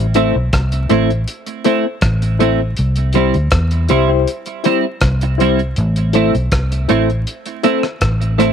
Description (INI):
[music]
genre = roots reggae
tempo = 80 BPM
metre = 4/4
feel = straight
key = A minor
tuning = A4 = 439 Hz
[part]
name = vintage muted fingered electric bass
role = bass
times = 0.0-8.5 s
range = A1 to E2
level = -16 LUFS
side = equal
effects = transformer saturation
[part]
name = reed electric piano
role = stabs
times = 0.1-8.5 s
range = E4 to C5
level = -18 LUFS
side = left 14 dB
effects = fast tremolo
[part]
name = cloth-damped thuddy drum kit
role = drums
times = 0.1-8.5 s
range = hi-hat, kick drum, rim click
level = -19 LUFS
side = equal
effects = none
[part]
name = clean electric guitar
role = accompaniment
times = 0.2-8.5 s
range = G3 to E4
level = -18 LUFS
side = right 10 dB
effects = lush chorus, tape echo
[sound]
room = light reverb, studio ambience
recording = 1960s-style stereo with parts hard left and right, vinyl crackle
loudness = -13 LUFS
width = side -8 dB against mid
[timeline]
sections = 0.0-8.5 A section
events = none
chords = 0.0 Am; 2.8 C; 5.8 Am